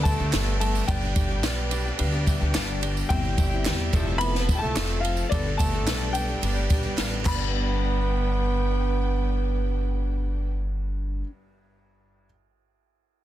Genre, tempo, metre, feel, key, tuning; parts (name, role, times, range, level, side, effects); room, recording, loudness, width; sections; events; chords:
indie folk with a building arrangement; 108 BPM; 4/4; straight; G mixolydian; A4 = 436 Hz
warm upright piano; melody; 0.0-11.2 s; D5 to B5; -32 LUFS; left 3 dB
warm trombone; second line; 0.0-10.5 s; D3 to B3; -32 LUFS; right 5 dB; digital delay
bright grand piano; accompaniment; 0.0-12.3 s; F1 to B5; -38 LUFS; equal
picked steel-string acoustic guitar; accompaniment; 0.0-11.3 s; G2 to A4; -34 LUFS; left 6 dB
clear studio string section; sustained chords; 0.0-10.5 s; G3 to A5; -37 LUFS; left 1 dB
upright bass; bass; 0.0-11.2 s; F1 to E2; -26 LUFS; equal
compact cocktail drum kit; drums; 0.1-7.4 s; crash cymbal, kick drum, ride cymbal, snare drum; -27 LUFS; equal
tambourine; percussion; 0.1-7.8 s; -43 LUFS; right 11 dB
group handclap; percussion; 0.3-7.8 s; -36 LUFS; right 3 dB
small room ambience; dense, heavily limited modern master, faint mains hum; -23 LUFS; side -13 dB against mid
0.0-7.5 A section; 7.5-9.7 B section
grand piano fill 1.4-3.1
0.0 Gadd9; 0.9 G; 3.1 C/G; 3.9 F; 5.3 Gadd9; 6.4 G